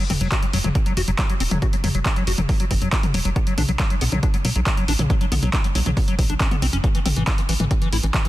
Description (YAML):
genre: uplifting trance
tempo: 138 BPM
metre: 4/4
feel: straight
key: unclear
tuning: A4 = 440 Hz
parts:
  - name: liquid acid bass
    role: arpeggios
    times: 0.0-8.3 s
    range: E3 to F#4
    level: -27 LUFS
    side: left 3 dB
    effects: chorus, sidechain pumping, tape echo
  - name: plucky analog bass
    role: bass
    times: 0.1-8.1 s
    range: E1 to B1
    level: -22 LUFS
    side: equal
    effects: sidechain pumping
  - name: punchy analog drum machine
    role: drums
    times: 0.1-8.3 s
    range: handclaps, hi-hat, toms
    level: -25 LUFS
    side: equal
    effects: none
  - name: electronic kick drum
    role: drums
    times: 0.3-8.2 s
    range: none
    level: -21 LUFS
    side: equal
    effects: none
room: digital ambience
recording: dense, heavily limited modern master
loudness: -18 LUFS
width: side -16 dB against mid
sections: 0.0-8.3 A section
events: none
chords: 0.0 N.C.; 3.4 B5; 6.8 A5